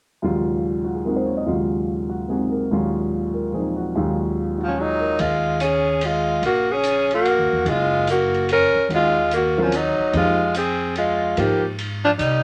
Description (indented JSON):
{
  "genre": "modal jazz",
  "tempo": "146 BPM",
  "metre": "3/4",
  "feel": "swing 65% on 8ths",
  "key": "Eb dorian",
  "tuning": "A4 = 440 Hz",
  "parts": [
    { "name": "warm baby grand piano", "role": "accompaniment", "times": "0.2-5.3, 8.9-11.6 s", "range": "Eb2 to Eb5", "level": "-24 LUFS", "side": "equal", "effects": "none" },
    { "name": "growling tenor saxophone", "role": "second line", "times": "4.6-12.4 s", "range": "F3 to Db4", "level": "-24 LUFS", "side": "equal", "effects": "none" },
    { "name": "clear alto saxophone", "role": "melody", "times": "4.7-12.4 s", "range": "Db4 to Bb4", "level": "-23 LUFS", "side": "equal", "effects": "none" },
    { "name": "upright bass", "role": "bass", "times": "5.2-12.4 s", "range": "Gb1 to C3", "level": "-30 LUFS", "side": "equal", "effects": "none" },
    { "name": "open jazz drum kit", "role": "drums", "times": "5.2-12.3 s", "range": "hi-hat, ride cymbal", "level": "-35 LUFS", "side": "equal", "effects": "none" }
  ],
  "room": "wet club ambience, RT60 0.5 s",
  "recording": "none",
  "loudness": "-21 LUFS",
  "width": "mono",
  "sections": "0.2-5.2 A section; 5.2-12.4 B section",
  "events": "none",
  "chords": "0.2 Ebm11; 10.1 Fm11",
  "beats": "| 0.23 0.64 1.06 | 1.47 1.88 2.30 | 2.71 3.12 3.54 | 3.95 4.36 4.77 | 5.18 5.60 6.01 | 6.42 6.83 7.25 | 7.66 8.07 8.48 | 8.90 9.31 9.72 | 10.13 10.54 10.96 | 11.37 11.78 12.19"
}